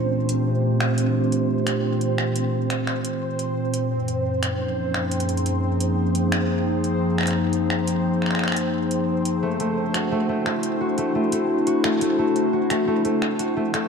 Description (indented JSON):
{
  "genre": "IDM",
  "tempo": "87 BPM",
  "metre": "4/4",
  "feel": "straight",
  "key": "unclear",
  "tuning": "A4 = 440 Hz",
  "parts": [
    { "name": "warbly tape-like pad", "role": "sustained chords", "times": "0.0-13.9 s", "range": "Gb2 to C5", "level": "-22 LUFS", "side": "left 1 dB", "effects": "chorus, built-in reverb" },
    { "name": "concert harp", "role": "arpeggios", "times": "0.0-0.8, 9.4-13.9 s", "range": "A3 to Db5", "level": "-27 LUFS", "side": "left 1 dB", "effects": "vintage 12-bit sampler grit, tape echo" },
    { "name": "bubbling stepped-filter texture", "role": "texture", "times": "0.0-13.9 s", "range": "C4 to C5", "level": "-29 LUFS", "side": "right 2 dB", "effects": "chorus, built-in reverb" },
    { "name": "booming analog drum machine", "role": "drums", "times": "0.3-13.9 s", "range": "finger snaps, hi-hat", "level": "-28 LUFS", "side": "equal", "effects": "overdrive" }
  ],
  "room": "moderate lush hall reverb, RT60 1.8 s",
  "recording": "dark, warm production",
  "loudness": "-20 LUFS",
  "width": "side -6 dB against mid",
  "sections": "0.0-13.9 A section",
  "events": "none",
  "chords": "0.0 Bbmaj7; 3.9 Gbmaj7; 9.4 D9",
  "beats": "0.46 | 1.15 1.84 2.53 3.22 | 3.91 4.60 5.29 5.98 | 6.67 7.36 8.05 8.74 | 9.43 10.12 10.80 11.49 | 12.18 12.87 13.56"
}